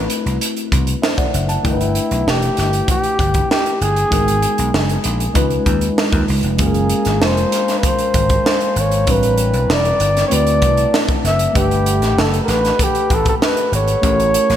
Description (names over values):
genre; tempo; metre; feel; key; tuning
polished 1980s jazz-funk pop; 97 BPM; 4/4; straight; unclear; A4 = 439 Hz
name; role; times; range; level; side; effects
breathy flugelhorn; melody; 0.0-14.6 s; E4 to E5; -19 LUFS; equal; digital delay
tine electric piano; accompaniment; 0.0-14.6 s; G3 to A5; -21 LUFS; left 1 dB; wide subtle chorus
vintage slap bass; bass; 0.0-14.6 s; E1 to D#2; -19 LUFS; equal; none
crisp fusion drum kit; drums; 0.1-14.6 s; hi-hat, kick drum, snare drum; -19 LUFS; right 1 dB; gated reverb
glass harmonica; sustained chords; 6.6-14.6 s; G4 to C#6; -28 LUFS; right 2 dB; none
room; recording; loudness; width
moderate lush hall reverb, RT60 3.0 s; bright 1980s-style digital production; -14 LUFS; side -10 dB against mid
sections
0.0-14.6 A section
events
none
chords
0.0 D13; 1.6 G6; 4.1 G#m9; 5.4 C#9; 6.6 F#maj9#11; 9.1 Am11; 10.3 D13; 11.6 Gmaj9; 14.0 A7b9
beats
0.41 1.03 | 1.65 2.27 2.88 3.50 | 4.12 4.74 5.36 5.98 | 6.60 7.22 7.84 8.46 | 9.08 9.70 10.31 10.93 | 11.55 12.17 12.79 13.41 | 14.03